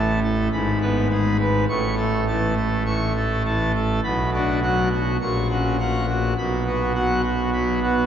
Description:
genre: classical, organ toccata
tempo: 102 BPM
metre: 4/4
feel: straight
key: A major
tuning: A4 = 439 Hz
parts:
  - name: pipe organ, full organ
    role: solo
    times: 0.0-8.1 s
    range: G#1 to C#6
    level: -19 LUFS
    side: equal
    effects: none
room: wet cathedral reverb, RT60 5.4 s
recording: nothing above 7.8 kHz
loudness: -19 LUFS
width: side -9 dB against mid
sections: 0.0-8.1 A section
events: none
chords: 0.0 A5; 0.5 G#m; 1.7 A; 4.0 Bm; 5.2 F#/A#; 6.4 B5

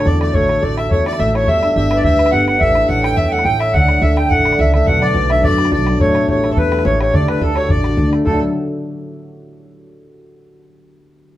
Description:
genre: celtic folk, Celtic reel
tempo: 212 BPM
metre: 4/4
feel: straight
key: D major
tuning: A4 = 440 Hz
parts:
  - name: accordion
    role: melody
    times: 0.0-8.4 s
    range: A4 to G5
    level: -16 LUFS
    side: equal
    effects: none
  - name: rich fiddle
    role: second line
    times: 0.0-8.4 s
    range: A4 to G5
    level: -26 LUFS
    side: left 2 dB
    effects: none
  - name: concert harp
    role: accompaniment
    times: 0.0-9.5 s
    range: D2 to D5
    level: -19 LUFS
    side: equal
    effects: none
  - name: upright bass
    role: bass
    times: 0.0-8.4 s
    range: G1 to F#2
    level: -19 LUFS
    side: right 1 dB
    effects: none
  - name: bodhran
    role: percussion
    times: 0.0-8.4 s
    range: none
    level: -21 LUFS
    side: equal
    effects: none
room: wet studio reverb, RT60 0.7 s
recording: band playing live in one room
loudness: -12 LUFS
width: side -14 dB against mid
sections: 0.0-8.3 A section; 8.3-9.4 B section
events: none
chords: 0.3 A; 1.5 G; 2.6 A; 4.9 Bm7; 6.0 A7; 8.3 D

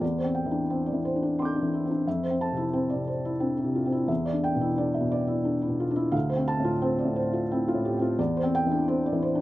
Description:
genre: neoclassical minimalist piano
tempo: 88 BPM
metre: 3/4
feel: rubato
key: unclear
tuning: A4 = 440 Hz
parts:
  - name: felt-muted upright piano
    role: solo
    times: 0.0-9.4 s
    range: D2 to G6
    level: -24 LUFS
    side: equal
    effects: slapback echo
room: light reverb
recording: recorded outdoors, with no room sound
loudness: -24 LUFS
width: side -16 dB against mid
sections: 0.0-9.4 A section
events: none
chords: 0.0 Cadd9/E; 2.1 Fmaj7; 4.1 Em7; 6.1 Dm7; 8.2 Cadd9/E

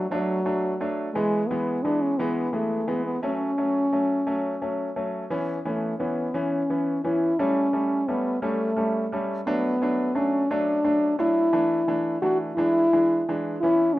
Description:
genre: six-eight pop ballad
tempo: 58 BPM (dotted quarters)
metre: 6/8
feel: straight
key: unclear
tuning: A4 = 443 Hz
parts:
  - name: warm French horn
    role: melody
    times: 0.0-14.0 s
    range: F#3 to F#4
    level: -23 LUFS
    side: equal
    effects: none
  - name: bright concert grand piano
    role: accompaniment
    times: 0.0-13.9 s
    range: E3 to D4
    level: -28 LUFS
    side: equal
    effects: none
room: light reverb, small room ambience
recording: rough home demo mix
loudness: -22 LUFS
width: side -16 dB against mid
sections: 0.0-14.0 A section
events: none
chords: 0.0 D; 1.2 E; 3.2 F#m; 5.3 C#m7; 7.4 A7; 9.5 D; 11.5 E7sus4; 12.6 E7

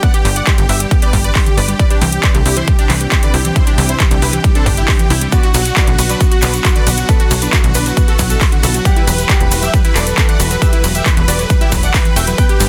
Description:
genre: uplifting trance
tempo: 136 BPM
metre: 4/4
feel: straight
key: E minor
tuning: A4 = 440 Hz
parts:
  - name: dense compressed supersaw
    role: melody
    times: 0.0-12.7 s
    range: C4 to G5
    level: -24 LUFS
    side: equal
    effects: sidechain pumping, tape echo
  - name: plucky unison lead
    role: second line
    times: 0.0-12.7 s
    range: F#4 to G5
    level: -29 LUFS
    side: equal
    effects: none
  - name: analog string pad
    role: sustained chords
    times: 0.0-12.7 s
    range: C3 to F#5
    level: -30 LUFS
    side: equal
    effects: none
  - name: analog pluck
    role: arpeggios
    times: 0.0-12.7 s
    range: D3 to B4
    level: -25 LUFS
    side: equal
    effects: chorus, sidechain pumping, tape echo
  - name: big-room dance drum kit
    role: drums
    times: 0.0-12.7 s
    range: handclaps, hi-hat, ride cymbal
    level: -21 LUFS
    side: equal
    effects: small room ambience, sidechain pumping on hats, sidechain pumping on cymbals
  - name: electronic kick drum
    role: drums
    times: 0.0-12.5 s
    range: none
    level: -15 LUFS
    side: equal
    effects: small room ambience
  - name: tight sequencer bass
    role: bass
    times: 0.2-12.7 s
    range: E1 to C2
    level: -19 LUFS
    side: equal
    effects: sidechain pumping
  - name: warm concert grand piano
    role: second line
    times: 5.3-12.7 s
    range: F#4 to B4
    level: -27 LUFS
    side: equal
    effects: dub echo
  - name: tube shaker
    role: percussion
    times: 5.3-12.7 s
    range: none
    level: -26 LUFS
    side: equal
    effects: none
room: digital ambience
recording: dense, heavily limited modern master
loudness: -13 LUFS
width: mono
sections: 0.0-12.7 A section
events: none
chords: 0.0 G; 1.8 Cadd9; 5.3 Bm; 8.9 Emadd9

